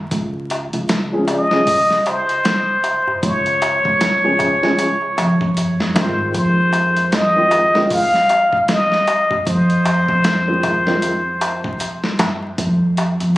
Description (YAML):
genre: trip hop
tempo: 77 BPM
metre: 4/4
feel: swing 59% on 16ths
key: F minor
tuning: A4 = 440 Hz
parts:
  - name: upright bass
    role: bass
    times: 0.0-13.4 s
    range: Ab1 to F2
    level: -21 LUFS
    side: equal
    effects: none
  - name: boom bap sampler-style drum kit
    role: drums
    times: 0.1-13.4 s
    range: hi-hat, kick drum, snare drum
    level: -22 LUFS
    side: equal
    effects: studio reverb
  - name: darbuka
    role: percussion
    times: 0.1-13.3 s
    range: none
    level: -26 LUFS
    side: left 1 dB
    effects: none
  - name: dark upright piano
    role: accompaniment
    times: 1.1-11.1 s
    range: Eb3 to Ab4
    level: -22 LUFS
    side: left 1 dB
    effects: tremolo, tape echo
  - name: trumpet with plunger mute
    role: melody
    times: 1.3-11.8 s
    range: C5 to F5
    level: -16 LUFS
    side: equal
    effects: vintage 12-bit sampler grit, tape echo
room: moderate spring reverb, RT60 2.3 s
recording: recorded on a phone in the room, club reverb, vinyl crackle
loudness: -14 LUFS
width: side -17 dB against mid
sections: 0.0-13.4 A section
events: none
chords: 0.1 Db; 6.3 Fm7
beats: | 0.12 0.90 1.68 2.45 | 3.23 4.01 4.79 5.57 | 6.35 7.13 7.91 8.69 | 9.47 10.25 11.03 11.80 | 12.58 13.36